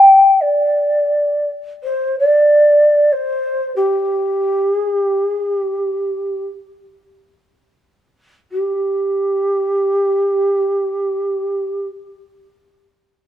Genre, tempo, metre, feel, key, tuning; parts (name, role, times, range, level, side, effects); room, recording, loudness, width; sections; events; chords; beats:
japanese traditional, Japanese chamber music; free time; A4 = 440 Hz
mellow hollow shakuhachi; solo; 0.0-11.9 s; G4 to G5; -13 LUFS; equal
light reverb; close, detailed microphones; -14 LUFS; side -11 dB against mid
0.0-8.5 A section; 8.5-12.8 B section
slowing down 4.5-8.5
free time